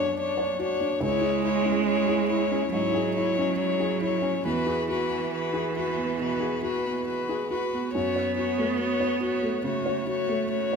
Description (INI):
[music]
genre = neoclassical piano and strings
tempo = 70 BPM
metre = 4/4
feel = rubato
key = F# minor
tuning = A4 = 440 Hz
[part]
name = clear violin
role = melody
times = 0.0-10.8 s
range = B4 to C#5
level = -28 LUFS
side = left 6 dB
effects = none
[part]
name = clear cello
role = second line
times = 0.0-10.8 s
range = E3 to B3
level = -29 LUFS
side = right 7 dB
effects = none
[part]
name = felt-muted upright piano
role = accompaniment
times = 0.0-10.8 s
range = C#2 to C#5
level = -30 LUFS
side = equal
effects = none
[part]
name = rich viola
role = accompaniment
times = 0.0-10.8 s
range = D4 to F#4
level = -34 LUFS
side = right 3 dB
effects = none
[sound]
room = moderate large studio reverb, RT60 1.4 s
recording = minimal, uncompressed stereo recording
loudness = -24 LUFS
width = side -5 dB against mid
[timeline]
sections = 0.0-10.8 A section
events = none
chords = 0.0 Bmadd9; 1.0 C#m; 4.5 Eadd9; 7.9 F#m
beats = 0.18 | 1.03 1.88 2.73 3.59 | 4.46 5.33 6.20 7.08 | 7.95 8.80 9.66 10.52